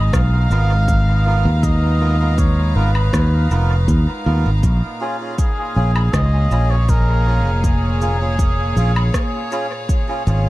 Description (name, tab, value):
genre	ambient dub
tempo	80 BPM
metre	4/4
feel	straight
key	unclear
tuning	A4 = 440 Hz
part	trumpet with cup mute	melody	0.0-9.9 s	E#4 to E#5	-26 LUFS	right 1 dB	dub echo
part	rich chamber string section	sustained chords	0.0-10.5 s	A#2 to A#5	-27 LUFS	equal	none
part	fingered electric bass	bass	0.0-10.5 s	E#1 to D#2	-15 LUFS	equal	tube saturation
part	electronic kick drum	drums	0.1-10.0 s	none	-19 LUFS	equal	none
part	electronic rim click, shaker and woodblock	drums	0.1-10.4 s	none	-30 LUFS	equal	dub echo
part	melodica	stabs	0.5-10.5 s	B3 to A#4	-27 LUFS	right 2 dB	dub echo
room	light reverb, small room ambience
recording	echo-heavy mix, vinyl crackle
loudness	-14 LUFS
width	side -18 dB against mid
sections	0.0-10.5 A section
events	none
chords	0.0 G#m69; 4.6 A#m7